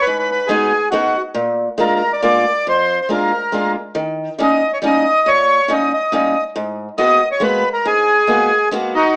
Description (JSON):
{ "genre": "musette waltz", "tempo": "139 BPM", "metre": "3/4", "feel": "straight", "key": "G# minor", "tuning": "A4 = 445 Hz", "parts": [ { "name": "accordion", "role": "melody", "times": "0.0-9.2 s", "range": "D#4 to D#5", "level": "-17 LUFS", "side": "equal", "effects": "none" }, { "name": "picked old ladder-braced acoustic guitar", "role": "accompaniment", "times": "0.1-8.9 s", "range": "E#2 to F#4", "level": "-21 LUFS", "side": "equal", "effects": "none" }, { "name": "bright violin", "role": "second line", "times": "8.9-9.1 s", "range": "D#4", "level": "-22 LUFS", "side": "equal", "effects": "none" } ], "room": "wet studio reverb, RT60 0.7 s", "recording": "small speaker sound", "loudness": "-16 LUFS", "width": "mono", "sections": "0.0-9.2 A section", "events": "none", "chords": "0.0 G#m7; 1.4 A#7; 4.0 D#7; 6.6 G#m9" }